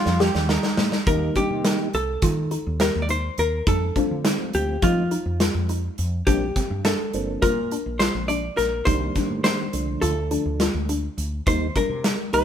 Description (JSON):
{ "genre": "progressive instrumental, band music in an uneven meter", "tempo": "208 BPM (eighths)", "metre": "9/8", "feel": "straight", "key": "unclear", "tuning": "A4 = 441 Hz", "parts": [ { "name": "archtop guitar, miked and amplified", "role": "melody", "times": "0.0-12.4 s", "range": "F4 to D5", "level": "-26 LUFS", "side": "left 1 dB", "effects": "none" }, { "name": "mellow flugelhorn", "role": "second line", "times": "0.0-1.1 s", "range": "Eb4 to G4", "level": "-28 LUFS", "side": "right 3 dB", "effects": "none" }, { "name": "woody wave-folded pluck", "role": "arpeggios", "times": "0.0-12.4 s", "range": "C4 to G4", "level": "-28 LUFS", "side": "left 3 dB", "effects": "chorus" }, { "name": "woody fretless electric bass", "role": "bass", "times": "0.1-12.4 s", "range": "G1 to F3", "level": "-26 LUFS", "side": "equal", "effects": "none" }, { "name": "big rock drum kit", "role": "drums", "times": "0.1-12.4 s", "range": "hi-hat, kick drum, snare drum", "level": "-24 LUFS", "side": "equal", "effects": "none" }, { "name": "tube shaker", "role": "percussion", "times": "0.2-0.9 s", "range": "none", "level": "barely audible", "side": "none", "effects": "none" }, { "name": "percussive tonewheel organ", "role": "accompaniment", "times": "1.1-12.4 s", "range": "D3 to F4", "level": "-29 LUFS", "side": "right 3 dB", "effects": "chorus vibrato, slow rotary speaker" } ], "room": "light reverb", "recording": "band playing live in one room", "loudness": "-20 LUFS", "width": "side -9 dB against mid", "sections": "0.0-1.1 A section; 1.1-12.4 B section", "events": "drum fill 0.0-1.1", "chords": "0.0 Cm7 (rootless); 1.1 Eb; 3.7 F; 6.3 Bbadd9; 8.9 Cm7; 10.0 Dm; 11.5 Eb" }